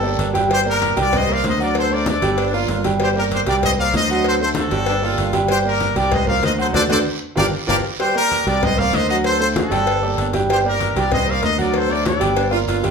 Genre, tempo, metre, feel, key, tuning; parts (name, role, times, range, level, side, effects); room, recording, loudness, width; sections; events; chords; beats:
latin, salsa; 192 BPM; 4/4; straight; G minor; A4 = 440 Hz
bright trumpet section; melody; 0.0-12.5 s; F#4 to F5; -21 LUFS; left 2 dB
warm upright piano; accompaniment; 0.0-12.9 s; F#3 to G5; -21 LUFS; right 3 dB
fingered electric bass; bass; 0.0-12.9 s; G1 to D2; -23 LUFS; equal
congas; percussion; 0.0-12.9 s; -27 LUFS; left 1 dB
cowbell; percussion; 0.2-12.9 s; -26 LUFS; left 8 dB
guiro; percussion; 0.2-12.9 s; -35 LUFS; right 5 dB
edgy saxophone section; second line; 2.4-7.8, 12.4-12.9 s; D4 to A4; -25 LUFS; right 3 dB
wet large studio reverb, RT60 0.8 s; band playing live in one room; -16 LUFS; side -6 dB against mid
0.0-8.0 A section; 8.0-12.9 A section
drum fill 6.8-8.0; band accent 6.8-8.0
0.0 Gm; 1.1 C5; 1.8 D7; 2.4 Gm; 3.6 C5; 4.3 D7; 4.9 Gm; 6.1 C5; 6.8 D7; 7.4 Gm7; 8.0 Gm; 8.6 C5; 9.2 D7; 9.9 Gm; 11.1 C5; 11.7 D7; 12.4 Gm
0.19 | 0.51 0.82 1.13 1.44 | 1.75 2.07 2.38 2.69 | 3.00 3.32 3.63 3.94 | 4.25 4.57 4.88 5.19 | 5.50 5.81 6.13 6.44 | 6.75 7.06 7.37 7.69 | 8.00 8.31 8.62 8.93 | 9.25 9.56 9.87 10.18 | 10.49 10.81 11.12 11.43 | 11.74 12.06 12.37 12.68